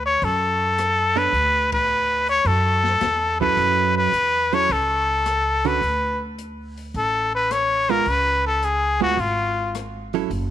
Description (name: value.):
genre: jazz, small-group swing and bop.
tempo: 107 BPM.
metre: 4/4.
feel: swing 69% on 8ths.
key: unclear.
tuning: A4 = 440 Hz.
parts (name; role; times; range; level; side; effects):
upright bass; bass; 0.0-10.5 s; F#1 to F#2; -27 LUFS; right 1 dB; none.
trumpet with straight mute; melody; 0.1-9.8 s; E#4 to C#5; -19 LUFS; left 2 dB; none.
open jazz drum kit; drums; 0.2-10.5 s; hi-hat, kick drum, ride cymbal, rim click, snare drum; -36 LUFS; left 5 dB; none.
hollow-body jazz guitar; accompaniment; 1.2-10.3 s; D3 to C#5; -25 LUFS; right 14 dB; none.
room: light reverb, small room ambience.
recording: 1960s-style stereo.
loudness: -18 LUFS.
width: side -11 dB against mid.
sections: 0.0-10.5 A section.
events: band accent 1.6.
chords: 0.0 Bm7; 3.6 F#m7; 5.8 D5; 8.1 C#.